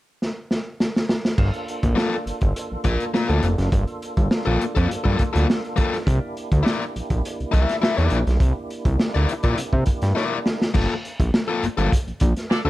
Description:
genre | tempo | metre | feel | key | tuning
funk | 102 BPM | 4/4 | straight | G dorian | A4 = 442 Hz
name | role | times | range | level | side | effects
crunchy breakbeat drum kit | drums | 0.2-12.6 s | crash cymbal, hi-hat, kick drum, snare drum | -22 LUFS | equal | none
percussive tonewheel organ | sustained chords | 1.4-10.7 s | Bb3 to A4 | -32 LUFS | right 2 dB | chorus vibrato, slow rotary speaker
fat analog bass | bass | 1.4-12.7 s | F1 to C3 | -20 LUFS | equal | none
biting overdriven guitar | accompaniment | 2.0-12.7 s | Bb3 to E5 | -24 LUFS | left 4 dB | none
clear horn section | second line | 12.5-12.6 s | Bb3 to D5 | -26 LUFS | right 1 dB | none
room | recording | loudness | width
little or no reverb | dark, warm production | -19 LUFS | side -16 dB against mid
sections
0.0-1.4 A section; 1.4-10.7 B section; 10.7-12.7 C section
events
drum fill 0.2-1.4, 10.2-10.7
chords
0.0 N.C.; 1.4 Gm9; 6.1 C9; 10.7 Gm9

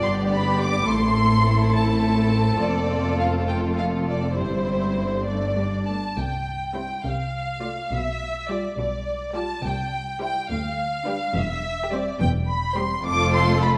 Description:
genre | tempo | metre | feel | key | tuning
quick classical-period movement for string orchestra | 70 BPM (dotted quarters) | 6/8 | rubato | C major | A4 = 441 Hz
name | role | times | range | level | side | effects
rich studio violin section | melody | 0.0-13.7 s | C5 to D6 | -28 LUFS | equal | none
rich studio violin section | second line | 0.0-13.8 s | D4 to D5 | -31 LUFS | equal | none
rich studio viola section | accompaniment | 0.0-13.8 s | G3 to F4 | -30 LUFS | equal | none
rich studio cello section | bass | 0.0-13.8 s | D2 to C3 | -29 LUFS | equal | none
rich studio double bass section | bass | 0.0-13.8 s | E1 to D2 | -30 LUFS | equal | none
room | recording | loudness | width
wet scoring stage reverb, RT60 1.5 s | dark, warm production | -24 LUFS | mono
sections
0.0-6.2 A section; 6.2-13.8 B section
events
none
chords
0.0 G; 0.9 Am; 2.6 Dm7/F; 4.4 C/G; 5.3 G5; 6.2 C; 7.1 Dm7/C; 7.9 G7/B; 9.6 C; 10.5 G7/D; 11.4 C/E; 13.1 F

